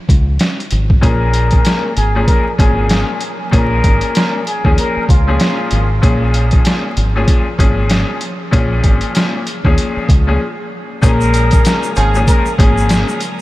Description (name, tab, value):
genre	hip hop, boom-bap hip-hop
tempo	96 BPM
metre	4/4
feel	swing 59% on 16ths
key	Bb minor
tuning	A4 = 440 Hz
part	deep dub fingered electric bass	bass	0.1-13.0 s	Ab1 to Eb2	-15 LUFS	equal	none
part	trip hop sampler-style drum kit	drums	0.1-13.4 s	hi-hat, kick drum, snare drum	-14 LUFS	equal	none
part	trumpet with plunger mute	melody	1.0-6.0, 11.0-13.1 s	F4 to Bb4	-21 LUFS	left 1 dB	high-pass filter, low-pass filter, tape echo
part	bright upright piano	accompaniment	1.0-13.2 s	Bb2 to Ab4	-19 LUFS	left 2 dB	cassette tape, high-pass filter, low-pass filter
part	tonewheel organ	sustained chords	11.0-13.4 s	Db3 to Bb3	-26 LUFS	equal	overdrive, fast rotary speaker, high-pass filter, low-pass filter
part	egg shaker	percussion	11.0-13.4 s	none	-32 LUFS	right 5 dB	none
part	clear horn section	stabs	12.0-12.2 s	F3 to Ab4	-26 LUFS	right 3 dB	none
room	light reverb, small room ambience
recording	vinyl crackle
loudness	-11 LUFS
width	side -17 dB against mid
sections	0.0-11.0 A section; 11.0-13.4 B section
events	break 0.0-1.0, 10.4-11.0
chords	0.0 Bbm7